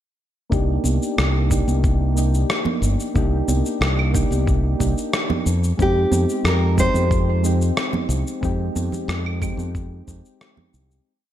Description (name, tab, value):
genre	sunset chillout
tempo	91 BPM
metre	4/4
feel	straight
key	C minor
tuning	A4 = 439 Hz
part	soft electric-piano-like synth keys	accompaniment	0.5-11.1 s	Ab3 to G4	-25 LUFS	right 1 dB	chorus, auto-pan, low-pass filter, tape echo
part	modern bright fingered electric bass	bass	0.5-11.0 s	G1 to F2	-20 LUFS	equal	none
part	electronic cabasa, rim click and claves	drums	0.5-11.0 s	none	-26 LUFS	equal	none
part	electronic kick drum	drums	0.5-10.2 s	none	-23 LUFS	equal	none
part	congas	percussion	0.8-10.7 s	none	-28 LUFS	right 4 dB	none
part	nylon-string guitar	melody	5.8-10.4 s	G4 to C5	-23 LUFS	right 1 dB	tape echo
room	light reverb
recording	dark, warm production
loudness	-18 LUFS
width	side -11 dB against mid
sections	0.5-11.1 groove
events	filter sweep on synth keys 0.5-11.1; fade-out 7.6-11.1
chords	0.5 Cm9; 5.5 Fm9